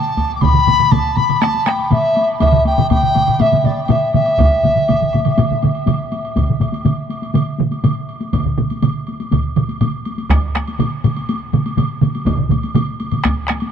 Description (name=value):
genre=japanese traditional, taiko drum ensemble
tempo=122 BPM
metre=4/4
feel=straight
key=unclear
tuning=A4 = 440 Hz
part: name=mellow large dizi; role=melody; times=0.0-5.6 s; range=D5 to D6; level=-16 LUFS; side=left 1 dB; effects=none
part: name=solo taiko drums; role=percussion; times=0.1-13.7 s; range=none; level=-23 LUFS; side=left 4 dB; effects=none
part: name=taiko ensemble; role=percussion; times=0.2-13.4 s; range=none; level=-19 LUFS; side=right 1 dB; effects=none
part: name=woodblock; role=percussion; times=0.2-13.7 s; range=none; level=-30 LUFS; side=right 3 dB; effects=none
part: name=taiko ensemble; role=percussion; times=0.4-13.6 s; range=none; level=-20 LUFS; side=left 2 dB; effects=none
part: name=taiko ensemble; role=percussion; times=0.4-13.6 s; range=none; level=-20 LUFS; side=right 4 dB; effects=none
room=moderate huge ambient reverb, RT60 7.6 s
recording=dark, warm production, nothing above 10.5 kHz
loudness=-14 LUFS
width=side -8 dB against mid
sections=0.0-6.4 A section; 6.4-13.7 B section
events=none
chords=none